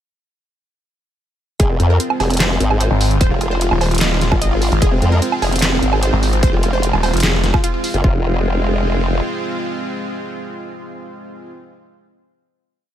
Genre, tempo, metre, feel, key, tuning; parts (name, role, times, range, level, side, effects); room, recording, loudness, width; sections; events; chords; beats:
heavy wobble dubstep; 149 BPM; 4/4; half-time; F minor; A4 = 436 Hz
wide unison pluck; melody; 1.6-11.5 s; C4 to Eb5; -23 LUFS; right 1 dB; digital delay
supersaw pad; sustained chords; 1.6-11.5 s; Ab3 to F4; -24 LUFS; equal; sidechain pumping
formant-sweep wobble bass; bass; 1.6-9.2 s; F1 to F2; -17 LUFS; equal; chorus, overdrive
dubstep drum kit; drums; 1.6-8.0 s; handclaps, hi-hat, snare drum, woodblock; -20 LUFS; right 2 dB; overdrive
electronic kick drum; drums; 1.6-8.1 s; -17 LUFS; equal; overdrive
snarling distorted saw bass; bass; 2.9-7.5 s; Eb1 to Ab1; -16 LUFS; equal; distortion, overdrive
digital ambience; -14 LUFS; side -11 dB against mid
1.6-8.0 drop; 8.0-11.3 final chord
drop 1.6-8.0
1.6 Fm
| 1.60 2.00 2.40 2.81 | 3.21 3.61 4.01 4.42 | 4.82 5.22 5.62 6.03 | 6.43 6.83 7.24 7.64 | 8.04 8.44 8.85 9.25 | 9.65 10.05 10.46 10.86